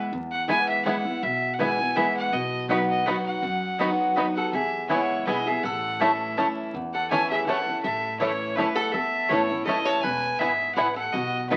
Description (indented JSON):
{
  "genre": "bluegrass",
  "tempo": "163 BPM",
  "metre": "3/4",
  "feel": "swing 53% on 8ths",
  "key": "E major",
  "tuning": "A4 = 441 Hz",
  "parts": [
    { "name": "picked steel-string acoustic guitar", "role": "accompaniment", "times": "0.0-11.6 s", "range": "E2 to F#4", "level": "-30 LUFS", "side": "equal", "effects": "none" },
    { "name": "upright bass", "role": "bass", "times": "0.1-11.6 s", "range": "E1 to F#2", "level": "-43 LUFS", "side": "equal", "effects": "none" },
    { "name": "clear fiddle", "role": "melody", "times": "0.3-11.6 s", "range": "B4 to A5", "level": "-30 LUFS", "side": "equal", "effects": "none" },
    { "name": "bluegrass banjo", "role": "arpeggios", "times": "0.5-11.6 s", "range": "A3 to F#4", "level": "-32 LUFS", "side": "equal", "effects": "none" },
    { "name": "mandolin", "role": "stabs", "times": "0.5-11.6 s", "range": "A3 to B5", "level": "-31 LUFS", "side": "equal", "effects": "none" },
    { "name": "lap resonator guitar", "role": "second line", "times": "4.4-11.6 s", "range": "D#4 to C#5", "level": "-32 LUFS", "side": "equal", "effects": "none" }
  ],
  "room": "moderate club reverb, RT60 0.9 s",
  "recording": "very old 78 rpm record, vinyl crackle",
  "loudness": "-25 LUFS",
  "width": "mono",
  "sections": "0.0-11.6 A section",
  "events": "none",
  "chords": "0.0 E; 2.3 B; 4.5 E; 5.6 A; 10.0 E"
}